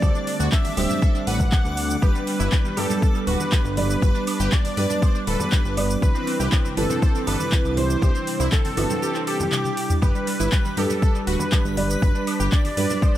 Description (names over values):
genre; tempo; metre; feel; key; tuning
progressive house; 120 BPM; 4/4; straight; G major; A4 = 440 Hz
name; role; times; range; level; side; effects
wide unison lead; melody; 0.0-13.2 s; G4 to F#5; -28 LUFS; equal; cassette tape, sidechain pumping, tape echo
airy breathy pad; sustained chords; 0.0-13.2 s; C3 to E4; -31 LUFS; left 1 dB; chorus, sidechain pumping
wide unison pluck; arpeggios; 0.0-13.2 s; G3 to C5; -31 LUFS; right 1 dB; phaser, sidechain pumping, tape echo
felt-muted upright piano; stabs; 0.0-13.2 s; E3 to D5; -28 LUFS; right 3 dB; sidechain pumping, tape echo
fat analog bass; bass; 0.0-12.9 s; D1 to G2; -25 LUFS; equal; sidechain pumping
electronic kick drum; drums; 0.0-13.1 s; none; -19 LUFS; equal; overdrive
pop drum kit; drums; 0.0-13.2 s; cabasa, handclaps, hi-hat, toms; -29 LUFS; equal; overdrive
woodblock and congas; percussion; 0.0-13.1 s; none; -35 LUFS; right 2 dB; sidechain pumping on perc
backwards swelling texture; texture; 0.0-13.2 s; D6 to B6; -38 LUFS; equal; built-in reverb, sidechain pumping
room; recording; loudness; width
little or no reverb; none; -19 LUFS; side -13 dB against mid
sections
0.0-13.2 A section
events
drum fill 9.5-10.0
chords
0.0 D7sus4; 2.0 G; 6.0 Cmaj7; 10.0 G